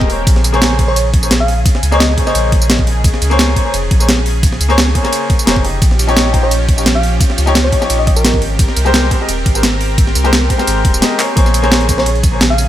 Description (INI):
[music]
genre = liquid drum and bass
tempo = 173 BPM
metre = 4/4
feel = swing 53% on 16ths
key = Bb dorian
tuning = A4 = 441 Hz
[part]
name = clear baby grand piano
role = accompaniment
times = 0.0-12.4 s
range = Ab3 to Eb5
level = -18 LUFS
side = left 2 dB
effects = tape echo
[part]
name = lush unison pad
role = sustained chords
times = 0.0-12.7 s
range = Db3 to Bb4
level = -23 LUFS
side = equal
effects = chorus
[part]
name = warm sub bass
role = bass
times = 0.0-12.7 s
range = Eb1 to Db2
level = -15 LUFS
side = equal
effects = tube saturation
[part]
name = electronic kick drum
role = drums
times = 0.0-12.3 s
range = none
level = -13 LUFS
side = equal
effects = none
[part]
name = breakbeat sampler-style drum kit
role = drums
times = 0.1-12.7 s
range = handclaps, hi-hat, ride cymbal, snare drum, tambourine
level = -16 LUFS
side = right 1 dB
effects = overdrive
[part]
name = bell-like FM electric piano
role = melody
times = 0.9-2.5, 6.4-8.4, 12.0-12.7 s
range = Bb4 to F5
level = -20 LUFS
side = equal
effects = chorus, dub echo
[sound]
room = little or no reverb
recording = none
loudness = -10 LUFS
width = side -12 dB against mid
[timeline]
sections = 0.0-11.4 A section; 11.4-12.7 A section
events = drop 0.0-11.4, 11.4-12.7; drum fill 11.2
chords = 0.3 Bbm9; 5.8 Eb9/Bb; 8.4 Abmaj9; 11.4 Bbm9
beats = | 0.27 0.62 0.96 1.31 | 1.66 2.00 2.35 2.70 | 3.04 3.39 3.74 4.08 | 4.43 4.78 5.12 5.47 | 5.82 6.17 6.51 6.86 | 7.21 7.55 7.90 8.25 | 8.59 8.94 9.29 9.63 | 9.98 10.33 10.67 11.02 | 11.37 11.71 12.06 12.41